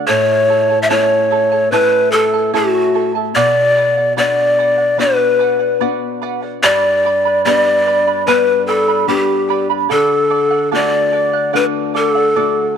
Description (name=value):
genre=andean folk, Andean ensemble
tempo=73 BPM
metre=4/4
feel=straight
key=B minor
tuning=A4 = 437 Hz
part: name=charango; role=accompaniment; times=0.0-12.8 s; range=E4 to B5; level=-20 LUFS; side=right 15 dB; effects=none
part: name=nylon-string guitar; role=accompaniment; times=0.0-12.8 s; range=G2 to F#4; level=-23 LUFS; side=left 11 dB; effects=none
part: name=breathy large pan pipes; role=melody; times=0.1-12.7 s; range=F#4 to E5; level=-13 LUFS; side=left 1 dB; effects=none
room=moderate plate reverb, RT60 2.5 s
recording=1960s-style stereo with parts hard left and right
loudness=-12 LUFS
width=side -7 dB against mid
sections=0.0-12.8 A section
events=none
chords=0.1 A; 3.4 Bm; 6.6 G; 9.9 D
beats=| 0.08 0.90 1.72 2.54 | 3.36 4.18 5.00 5.82 | 6.64 7.46 8.28 9.10 | 9.91 10.73 11.55 12.37